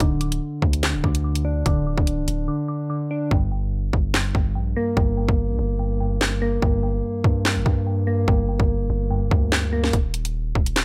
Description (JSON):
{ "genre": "hip hop, drill", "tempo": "145 BPM", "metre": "4/4", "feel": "half-time", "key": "G minor", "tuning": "A4 = 440 Hz", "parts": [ { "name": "soft electric-piano-like synth keys", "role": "accompaniment", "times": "0.0-10.0 s", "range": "G2 to D4", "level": "-27 LUFS", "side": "equal", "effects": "chorus, tremolo, low-pass filter" }, { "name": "long sustained 808-style bass", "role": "bass", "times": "0.0-10.8 s", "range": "C1 to G2", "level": "-27 LUFS", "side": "equal", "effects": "none" }, { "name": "drill drum kit", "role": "drums", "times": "0.0-10.8 s", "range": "handclaps, hi-hat, kick drum, snare drum", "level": "-24 LUFS", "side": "equal", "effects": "none" } ], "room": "little or no reverb", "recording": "none", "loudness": "-22 LUFS", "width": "mono", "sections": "0.0-10.8 A section", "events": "filter sweep on synth keys 0.0-3.3; break 2.5-3.3, 9.9-10.8; hi-hats muted 3.3-9.9", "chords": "0.0 N.C.; 3.3 Gm; 9.9 N.C.", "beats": "| 0.00 0.42 0.83 1.24 | 1.66 2.07 2.48 2.90 | 3.31 3.73 4.14 4.55 | 4.97 5.38 5.80 6.21 | 6.62 7.04 7.45 7.87 | 8.28 8.69 9.11 9.52 | 9.93 10.35 10.76" }